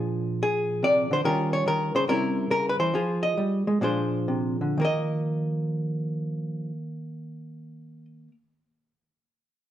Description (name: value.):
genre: solo jazz.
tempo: 123-145 BPM.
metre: 4/4.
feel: swing 67% on 8ths.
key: unclear.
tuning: A4 = 441 Hz.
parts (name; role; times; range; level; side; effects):
hollow-body jazz guitar; solo; 0.0-8.3 s; Bb2 to Eb5; -24 LUFS; equal; none.
room: moderate large studio reverb, RT60 1.3 s.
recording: dark, warm production.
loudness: -23 LUFS.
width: side -11 dB against mid.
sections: 0.0-4.8 A section; 4.8-8.7 B section.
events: slowing down 1.2-4.8.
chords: 0.0 Bb9; 1.2 Eb9; 2.1 C7b9; 2.9 Fm7; 3.8 Bb9; 4.8 Ebsus2.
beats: 0.41 0.82 | 1.24 1.65 2.07 2.50 | 2.93 3.37 3.82 4.28 | 4.76 5.25 5.74 6.22 | 6.71 7.20 7.68 8.17.